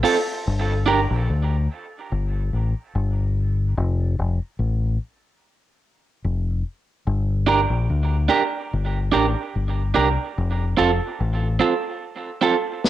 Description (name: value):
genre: dub reggae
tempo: 73 BPM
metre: 4/4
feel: straight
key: G minor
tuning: A4 = 441 Hz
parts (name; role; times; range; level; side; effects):
- electric guitar at the edge of break-up; accompaniment; 0.0-1.0, 7.5-12.6 s; C4 to Bb4; -21 LUFS; right 5 dB; spring reverb, cassette tape, dub echo
- deep dub fingered electric bass; bass; 0.0-11.6 s; F1 to D2; -21 LUFS; left 2 dB; none
- vintage drum kit; drums; 0.0-0.2, 12.8-12.9 s; hi-hat, snare drum; -26 LUFS; left 2 dB; cassette tape
room: light reverb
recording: home recording on cassette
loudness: -20 LUFS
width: side -13 dB against mid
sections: 0.5-12.9 A section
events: break 0.0-0.5, 0.5-7.1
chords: 0.5 G5; 3.8 F; 7.1 Gm; 10.4 F